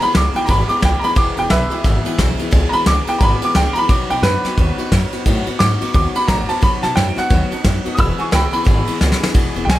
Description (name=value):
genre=rockabilly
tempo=176 BPM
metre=4/4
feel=swing 61% on 8ths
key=E major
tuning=A4 = 442 Hz
part: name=bright upright piano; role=melody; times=0.0-9.8 s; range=B4 to E6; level=-19 LUFS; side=right 1 dB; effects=tape echo
part: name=picked steel-string acoustic guitar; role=accompaniment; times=0.0-9.8 s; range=E2 to G#4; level=-24 LUFS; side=left 5 dB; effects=none
part: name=upright bass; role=bass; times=0.0-9.8 s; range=E1 to A2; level=-20 LUFS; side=equal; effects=none
part: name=soft brush drum kit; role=drums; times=0.0-9.8 s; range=kick drum, ride cymbal, snare drum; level=-17 LUFS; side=equal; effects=none
room=light reverb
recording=none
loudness=-14 LUFS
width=side -15 dB against mid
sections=0.0-9.4 A section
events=upright piano solo 0.0-9.4; drum fill 9.0-9.4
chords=0.0 E; 3.9 B; 8.0 E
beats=0.15 0.49 0.83 | 1.17 1.51 1.85 2.19 | 2.53 2.87 3.21 3.55 | 3.89 4.24 4.58 4.92 | 5.26 5.60 5.94 6.28 | 6.62 6.96 7.30 7.64 | 7.99 8.33 8.67 9.01 | 9.35 9.69